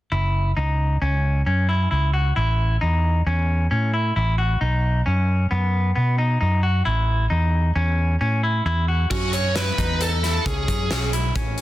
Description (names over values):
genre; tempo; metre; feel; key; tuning
progressive instrumental, band music in an uneven meter; 134 BPM; 5/4; straight; unclear; A4 = 440 Hz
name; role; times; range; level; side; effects
clean electric guitar; arpeggios; 0.1-11.6 s; B3 to F#4; -25 LUFS; left 1 dB; none
fretless electric bass; bass; 0.1-11.6 s; F#1 to B2; -20 LUFS; equal; none
bluesy overdriven lead guitar; melody; 9.1-11.1 s; F#4 to C#5; -25 LUFS; right 1 dB; distortion
big rock drum kit; drums; 9.1-11.6 s; crash cymbal, hi-hat, kick drum, snare drum; -25 LUFS; equal; none
room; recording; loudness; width
small room ambience; dense, heavily limited modern master; -19 LUFS; side -15 dB against mid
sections
0.1-9.1 A section; 9.1-11.6 B section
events
none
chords
0.1 F#5; 2.4 A; 4.6 B; 6.9 A; 9.1 F#7sus2